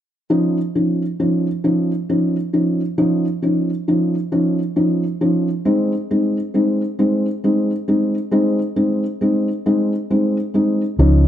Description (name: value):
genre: six-eight pop ballad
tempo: 45 BPM (dotted quarters)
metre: 6/8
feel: straight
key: Db major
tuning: A4 = 440 Hz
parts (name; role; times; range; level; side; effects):
- felt-muted upright piano; accompaniment; 0.3-11.3 s; F3 to Eb4; -16 LUFS; equal; none
- vintage muted fingered electric bass; bass; 11.0-11.3 s; Db2; -11 LUFS; equal; none
room: moderate scoring stage reverb, RT60 1.5 s, small room ambience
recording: none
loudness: -16 LUFS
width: side -11 dB against mid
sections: 0.3-11.0 A section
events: none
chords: 0.3 Dbadd9; 5.7 Ab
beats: | 0.31 1.65 | 2.98 4.32 | 5.66 6.99 | 8.32 9.66 | 10.99